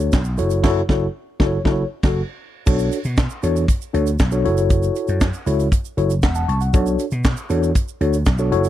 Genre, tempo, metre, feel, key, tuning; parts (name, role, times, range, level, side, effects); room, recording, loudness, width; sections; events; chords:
early-eighties boogie funk; 118 BPM; 4/4; straight; B minor; A4 = 440 Hz
mellow tine electric piano; accompaniment; 0.0-8.7 s; D4 to C#6; -21 LUFS; left 2 dB; medium stereo tremolo
vintage slap bass; bass; 0.0-8.7 s; E1 to B2; -20 LUFS; equal
tight funk drum kit; drums; 0.0-8.7 s; crash cymbal, handclaps, hi-hat, kick drum, snare drum; -19 LUFS; equal
egg shaker; percussion; 0.0-8.7 s; -38 LUFS; right 21 dB
little or no reverb; dry, close 1970s-style studio recording; -17 LUFS; side -12 dB against mid
0.0-2.7 A section; 2.7-8.7 B section
band accent 0.6-2.7
0.4 F#m7; 2.7 Bm7; 4.4 F#m7; 6.7 Bm7